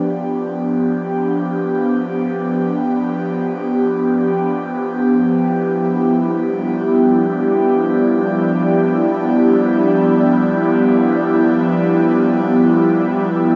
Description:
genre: ambient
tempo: free time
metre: none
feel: none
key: G mixolydian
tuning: A4 = 440 Hz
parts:
  - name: airy breathy pad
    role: sustained chords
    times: 0.0-13.6 s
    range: F3 to G4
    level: -17 LUFS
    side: equal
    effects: chorus, phaser
  - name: organ-like drone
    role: drone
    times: 6.3-13.6 s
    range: G3 to D4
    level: -23 LUFS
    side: equal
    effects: ensemble chorus, built-in reverb
room: wet cathedral reverb, RT60 6.0 s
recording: in a vast, echoing space, nothing above 7.6 kHz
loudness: -16 LUFS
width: mono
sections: 0.0-13.6 A section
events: none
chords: 0.0 G7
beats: free time

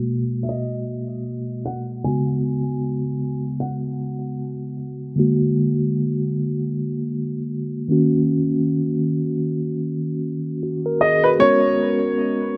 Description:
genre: R&B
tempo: 77 BPM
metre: 4/4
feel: swing 58% on 16ths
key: G# minor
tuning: A4 = 440 Hz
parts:
  - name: mellow tine electric piano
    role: accompaniment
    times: 0.0-12.6 s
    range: B2 to A#4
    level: -23 LUFS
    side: equal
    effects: none
  - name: clear grand piano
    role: melody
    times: 0.4-4.7, 11.0-12.6 s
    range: B4 to G#5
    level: -22 LUFS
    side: equal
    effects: none
room: moderate lush hall reverb, RT60 2.5 s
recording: low-pass filter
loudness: -22 LUFS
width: mono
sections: 0.0-11.4 A section; 11.4-12.6 B section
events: filter sweep 0.0-11.4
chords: 0.0 G#m9; 2.0 C#7sus4; 5.2 A#7b13; 7.9 D#m7; 11.4 G#m11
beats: 0.49 1.27 | 2.05 2.83 3.61 4.39 | 5.17 5.95 6.72 7.50 | 8.28 9.06 9.84 10.62 | 11.40 12.18

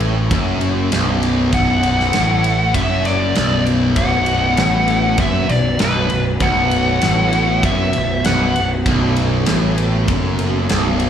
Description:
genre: stoner and doom metal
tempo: 98 BPM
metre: 4/4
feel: straight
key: unclear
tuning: A4 = 440 Hz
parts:
  - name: fuzz guitar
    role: riff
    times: 0.0-11.1 s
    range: B1 to A2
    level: -19 LUFS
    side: equal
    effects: distortion, slapback echo
  - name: fuzz picked electric bass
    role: bass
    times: 0.0-11.1 s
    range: B0 to A1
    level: -19 LUFS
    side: equal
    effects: overdrive
  - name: big rock drum kit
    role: drums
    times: 0.0-11.1 s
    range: kick drum, ride cymbal, snare drum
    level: -22 LUFS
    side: equal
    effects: none
  - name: fuzz lead guitar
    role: melody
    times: 1.5-8.7 s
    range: B4 to F#5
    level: -19 LUFS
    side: left 1 dB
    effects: wah, distortion, slapback echo, tape echo
  - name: mellow tonewheel organ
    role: sustained chords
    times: 4.0-11.1 s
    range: B3 to B4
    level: -27 LUFS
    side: right 2 dB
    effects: chorus vibrato, stopped rotary speaker
room: small room ambience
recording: live gig heard through the venue's PA, club reverb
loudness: -14 LUFS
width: side -9 dB against mid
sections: 0.0-11.1 A section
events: none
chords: 0.0 B5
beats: 0.32 0.93 | 1.54 2.14 2.75 3.36 | 3.97 4.58 5.19 5.80 | 6.41 7.02 7.63 8.24 | 8.86 9.47 10.08 10.69

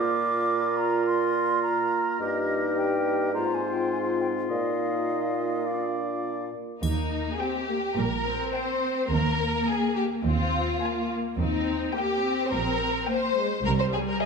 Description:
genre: cinematic, playful, whimsical film cue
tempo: 105 BPM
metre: 4/4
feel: straight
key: Eb major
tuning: A4 = 440 Hz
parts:
  - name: clear clarinet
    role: second line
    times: 0.0-6.5 s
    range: F4 to G4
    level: -30 LUFS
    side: left 1 dB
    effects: none
  - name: mellow hollow silver concert flute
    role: second line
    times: 0.0-6.5 s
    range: Eb5 to D6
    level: -29 LUFS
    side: equal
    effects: none
  - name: warm oboe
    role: second line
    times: 0.0-6.5 s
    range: Bb4 to Eb5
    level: -34 LUFS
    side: right 2 dB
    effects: none
  - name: mellow bassoon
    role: accompaniment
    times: 0.0-6.5 s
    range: G2 to Bb2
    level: -29 LUFS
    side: right 5 dB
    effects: none
  - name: warm French horn section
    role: sustained chords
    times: 0.0-6.5 s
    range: Bb3 to F4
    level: -32 LUFS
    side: left 3 dB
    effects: none
  - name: warm studio violin section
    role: second line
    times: 6.8-14.3 s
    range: Eb4 to C5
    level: -27 LUFS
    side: left 2 dB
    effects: none
  - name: warm studio viola section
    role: accompaniment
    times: 6.8-14.3 s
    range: G3 to C4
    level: -31 LUFS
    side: left 1 dB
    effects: none
  - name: rich studio double bass section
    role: bass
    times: 6.8-14.1 s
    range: Bb1 to Eb2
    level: -31 LUFS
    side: right 3 dB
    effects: none
  - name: warm chamber cello section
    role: bass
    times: 6.8-14.1 s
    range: C2 to Bb2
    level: -31 LUFS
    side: right 2 dB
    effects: none
  - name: triangle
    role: percussion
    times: 6.8-7.9 s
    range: none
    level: -43 LUFS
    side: left 3 dB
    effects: none
  - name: rich chamber violin section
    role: melody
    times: 7.4-14.3 s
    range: Eb5 to Ab5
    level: -36 LUFS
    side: left 4 dB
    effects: none
room: wet scoring stage reverb, RT60 1.5 s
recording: minimal, uncompressed stereo recording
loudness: -24 LUFS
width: side -5 dB against mid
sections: 0.0-6.8 A section; 6.8-14.3 A section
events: none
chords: 0.0 Bb; 2.2 Eb/G; 3.3 Ab6; 4.5 Bbsus4; 5.7 Bb; 6.8 Eb; 9.1 Bb5/Eb; 11.4 Eb; 13.7 C5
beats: 0.49 1.05 1.63 | 2.20 2.77 3.34 3.92 | 4.50 5.08 5.67 6.25 | 6.83 7.41 7.98 8.55 | 9.12 9.69 10.25 10.82 | 11.39 11.96 12.52 13.09 | 13.65 14.21

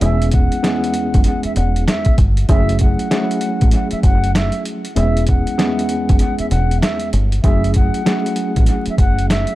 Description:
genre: hip hop, boom-bap hip-hop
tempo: 97 BPM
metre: 4/4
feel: swing 62% on 16ths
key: F# minor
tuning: A4 = 440 Hz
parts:
  - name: mellow concert flute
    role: melody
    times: 0.0-9.6 s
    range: E5 to F#5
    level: -24 LUFS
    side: left 1 dB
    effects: high-pass filter, low-pass filter, analog delay
  - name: mellow tine electric piano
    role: accompaniment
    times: 0.0-9.6 s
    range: E2 to G#4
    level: -20 LUFS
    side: right 1 dB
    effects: medium stereo tremolo, high-pass filter, low-pass filter, analog delay
  - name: deep dub fingered electric bass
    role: bass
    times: 0.0-9.4 s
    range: E1 to A1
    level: -17 LUFS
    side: equal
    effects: none
  - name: boom bap sampler-style drum kit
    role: drums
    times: 0.0-9.6 s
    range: hi-hat, kick drum, snare drum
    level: -17 LUFS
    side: equal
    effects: none
room: digital ambience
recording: echo-heavy mix, vinyl crackle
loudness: -14 LUFS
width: side -16 dB against mid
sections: 0.0-9.6 A section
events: kick muted 6.2-7.4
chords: 0.0 C#m7/E; 2.5 F#m9; 5.0 C#m7/E; 7.4 F#m9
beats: | 0.02 0.64 1.25 1.87 | 2.49 3.11 3.73 4.35 | 4.96 5.58 6.20 6.82 | 7.44 8.06 8.68 9.29

